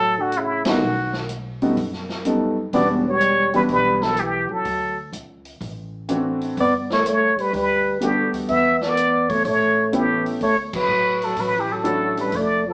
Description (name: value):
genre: jazz, small-group swing and bop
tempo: 125 BPM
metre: 4/4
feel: swing 68% on 8ths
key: D major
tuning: A4 = 440 Hz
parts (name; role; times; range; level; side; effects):
- trumpet with plunger mute; melody; 0.0-12.7 s; E4 to E5; -19 LUFS; equal; plate reverb
- breathy trombone; second line; 0.0-12.7 s; C#3 to B3; -24 LUFS; equal; none
- upright bass; bass; 0.0-12.7 s; E1 to A2; -33 LUFS; equal; none
- swinging big-band drum kit; drums; 0.3-12.5 s; crash cymbal, hi-hat, kick drum, ride cymbal, snare drum; -31 LUFS; equal; none
- clear upright piano; accompaniment; 0.7-12.3 s; E3 to A4; -22 LUFS; equal; none
room: wet club reverb, RT60 0.8 s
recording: heard from further back in the room, small speaker sound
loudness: -18 LUFS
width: side -35 dB against mid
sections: 0.0-12.7 A section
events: band accent 0.6, 10.6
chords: 0.0 D; 0.8 B7b13; 2.7 Em9; 4.7 D7; 6.6 Gmaj9; 8.5 E5; 9.5 A7; 10.4 Dmaj7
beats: 0.33 | 0.81 1.29 1.77 2.25 | 2.73 3.21 3.69 4.17 | 4.65 5.13 5.61 6.09 | 6.57 7.05 7.53 8.01 | 8.49 8.97 9.45 9.93 | 10.41 10.89 11.37 11.84 | 12.32